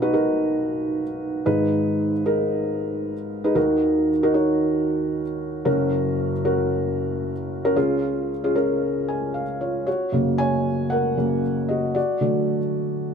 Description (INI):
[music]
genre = pop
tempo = 114 BPM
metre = 4/4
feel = swing 56% on 16ths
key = F# major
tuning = A4 = 440 Hz
[part]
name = felt-muted upright piano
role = solo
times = 0.0-13.1 s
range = F#1 to G#5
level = -20 LUFS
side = equal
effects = none
[sound]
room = light reverb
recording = none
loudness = -20 LUFS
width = side -6 dB against mid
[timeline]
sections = 0.0-9.9 A section; 9.9-13.1 B section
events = felt piano fill 8.8-9.9; felt piano solo 9.9-13.1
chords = 0.0 B; 1.5 G#m; 3.6 D#m; 5.7 F#; 7.8 C#; 9.9 F#add9; 12.0 D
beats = 0.41 0.94 | 1.46 1.99 2.51 3.04 | 3.56 4.09 4.62 5.14 | 5.67 6.19 6.72 7.24 | 7.77 8.29 8.82 9.35 | 9.87 10.39 10.92 11.44 | 11.97 12.49 13.02